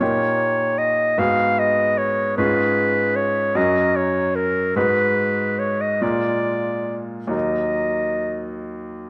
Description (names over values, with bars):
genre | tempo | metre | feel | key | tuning
classical, romantic duo for clarinet and grand piano | 44-52 BPM (dotted quarters) | 6/8 | rubato | Eb minor | A4 = 440 Hz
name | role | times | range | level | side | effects
warm clarinet | melody | 0.0-8.6 s | Bb4 to F5 | -22 LUFS | equal | none
bright grand piano | accompaniment | 0.0-9.1 s | Eb2 to Cb5 | -25 LUFS | equal | none
room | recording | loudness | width
moderate recital hall reverb, RT60 1.8 s | close, detailed microphones | -20 LUFS | mono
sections
0.0-9.1 A section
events
none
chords
0.0 Eb7/Bb; 1.2 Abm7; 2.4 Db7/Ab; 3.6 Gb; 4.8 Abm7; 6.0 Bb7; 7.3 Ebm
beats
| 0.01 1.18 | 2.38 3.56 | 4.75 6.02 | 7.33 8.67